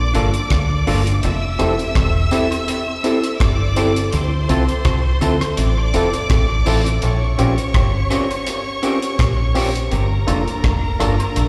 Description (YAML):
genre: lovers rock reggae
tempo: 83 BPM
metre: 4/4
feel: swing 55% on 16ths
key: F major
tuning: A4 = 439 Hz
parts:
  - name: clear studio string section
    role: second line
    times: 0.0-11.5 s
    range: Bb4 to E6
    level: -28 LUFS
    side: equal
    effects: tape echo, slapback echo
  - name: deep dub fingered electric bass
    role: bass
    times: 0.0-11.5 s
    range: E1 to D2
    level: -20 LUFS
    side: equal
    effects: none
  - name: barky tine electric piano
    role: accompaniment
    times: 0.1-11.1 s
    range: Bb3 to A4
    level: -26 LUFS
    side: equal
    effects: tape echo, slapback echo
  - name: electric guitar through a small old amp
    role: stabs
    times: 0.1-11.1 s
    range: C4 to Bb4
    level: -27 LUFS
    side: equal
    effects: tape echo, slapback echo
  - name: cloth-damped thuddy drum kit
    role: drums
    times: 0.1-11.5 s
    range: hi-hat, kick drum, rim click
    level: -25 LUFS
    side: equal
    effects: tape echo
  - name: tambourine and woodblock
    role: percussion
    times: 0.1-11.3 s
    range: none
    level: -38 LUFS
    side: equal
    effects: none
room: light reverb, small room ambience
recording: live gig heard through the venue's PA, recital hall reverb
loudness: -18 LUFS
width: mono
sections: 0.0-11.5 A section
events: none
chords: 0.0 Gm7; 1.2 Fmaj7; 4.1 Dm7; 7.0 Bbm6; 9.9 Gm7